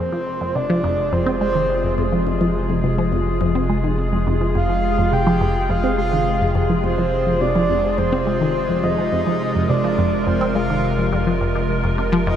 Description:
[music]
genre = ambient, sequencer-driven space music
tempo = 105 BPM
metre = 4/4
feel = straight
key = F dorian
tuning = A4 = 440 Hz
[part]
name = breathy flute-like synth lead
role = melody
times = 0.0-12.4 s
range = C5 to G5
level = -23 LUFS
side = right 1 dB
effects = lush chorus, shimmer reverb, tape echo
[part]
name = evolving wavetable pad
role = sustained chords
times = 0.3-12.4 s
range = C3 to Bb4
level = -22 LUFS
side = equal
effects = chorus, built-in reverb
[part]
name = resonant blip pluck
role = riff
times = 0.0-12.4 s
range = F2 to C4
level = -21 LUFS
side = equal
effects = chorus, phaser, tape echo
[part]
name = warm sub bass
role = bass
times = 0.0-12.4 s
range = F1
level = -26 LUFS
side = equal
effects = none
[sound]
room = moderate huge ambient reverb, RT60 8.2 s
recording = in a vast, echoing space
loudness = -17 LUFS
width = side -9 dB against mid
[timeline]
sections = 0.0-12.4 A section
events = none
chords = 0.0 Fm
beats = 0.55 1.12 1.70 | 2.27 2.84 3.41 3.98 | 4.55 5.12 5.70 6.27 | 6.84 7.41 7.98 8.55 | 9.12 9.70 10.27 10.84 | 11.41 11.98

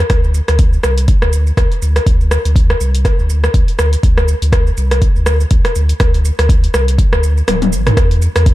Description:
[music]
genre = afro house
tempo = 122 BPM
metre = 4/4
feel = swing 57% on 16ths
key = unclear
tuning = A4 = 442 Hz
[part]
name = warm sub bass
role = bass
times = 0.0-8.5 s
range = D1 to E2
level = -14 LUFS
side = equal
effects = sidechain pumping
[part]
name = deep house drum kit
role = drums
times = 0.0-8.5 s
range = hi-hat, rim click, shaker, toms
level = -18 LUFS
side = equal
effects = overdrive
[part]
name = electronic kick drum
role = drums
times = 0.1-8.5 s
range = none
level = -12 LUFS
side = equal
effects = overdrive
[sound]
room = little or no reverb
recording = dark, warm production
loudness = -10 LUFS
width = side -16 dB against mid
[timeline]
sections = 0.0-8.0 A section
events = kick drops out 7.5-8.0; drum fill 7.5-8.0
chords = none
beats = | 0.10 0.59 1.08 1.58 | 2.07 2.56 3.05 3.54 | 4.04 4.53 5.02 5.51 | 6.00 6.49 6.99 7.48 | 7.97 8.46

